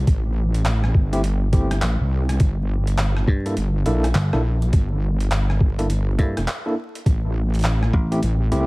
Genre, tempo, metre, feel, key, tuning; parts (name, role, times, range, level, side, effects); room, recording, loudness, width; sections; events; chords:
glitch hop; 103 BPM; 4/4; swing 62% on 16ths; G dorian; A4 = 441 Hz
wobble bass; bass; 0.0-8.7 s; E1 to C2; -20 LUFS; equal; chorus, overdrive
boom bap sampler-style drum kit; drums; 0.1-8.7 s; handclaps, hi-hat, rim click; -29 LUFS; equal
electronic kick drum; drums; 0.1-8.1 s; -18 LUFS; equal
overdriven tine electric piano; stabs; 1.1-8.7 s; A3 to A4; -27 LUFS; equal; fast tremolo, sidechain pumping, dub echo
dry thumbed slap bass; bass; 3.3-8.2 s; G1 to G2; -22 LUFS; equal
little or no reverb; vinyl crackle; -18 LUFS; side -23 dB against mid
0.0-8.7 A section
0.0 Am7; 2.4 Gm69; 7.1 Am7